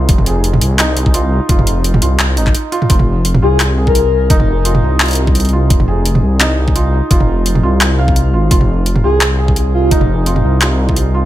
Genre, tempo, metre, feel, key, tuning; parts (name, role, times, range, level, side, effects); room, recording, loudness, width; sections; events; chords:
half-time drum and bass; 171 BPM; 4/4; swing 55% on 16ths, half-time; F minor; A4 = 440 Hz
felt-muted upright piano; arpeggios; 0.0-11.3 s; Eb4 to F5; -20 LUFS; right 3 dB; digital delay
dark detuned saw bass; bass; 0.0-11.3 s; F1 to C2; -13 LUFS; equal
drum and bass drum kit; drums; 0.1-11.0 s; handclaps, hi-hat, toms; -16 LUFS; right 1 dB; overdrive
electronic kick drum; drums; 0.1-11.0 s; -13 LUFS; equal; overdrive
breathy flute-like synth lead; melody; 3.4-4.4, 9.0-10.0 s; F4 to Bb4; -18 LUFS; left 2 dB; wide subtle chorus, digital delay
digital ambience; -10 LUFS; side -13 dB against mid
0.0-2.9 A section; 2.9-11.3 A section
drop 0.0-2.9, 2.9-11.3; break 2.5-2.9
0.0 Fm